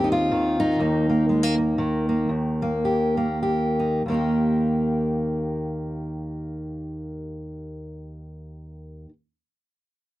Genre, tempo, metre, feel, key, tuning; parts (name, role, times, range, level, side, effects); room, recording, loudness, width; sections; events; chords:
folk, solo fingerstyle acoustic guitar; 90-125 BPM; 3/4; swing 58% on 8ths; Eb major; A4 = 439 Hz
fingerpicked steel-string acoustic guitar; solo; 0.0-9.1 s; Eb2 to G4; -22 LUFS; equal
little or no reverb; dry, close 1970s-style studio recording; -21 LUFS; side -16 dB against mid
0.0-2.3 A section; 2.3-4.0 B section; 4.0-8.0 C section
slowing down 0.8-4.0
0.0 Cm/Eb; 0.8 Eb5; 2.3 Eb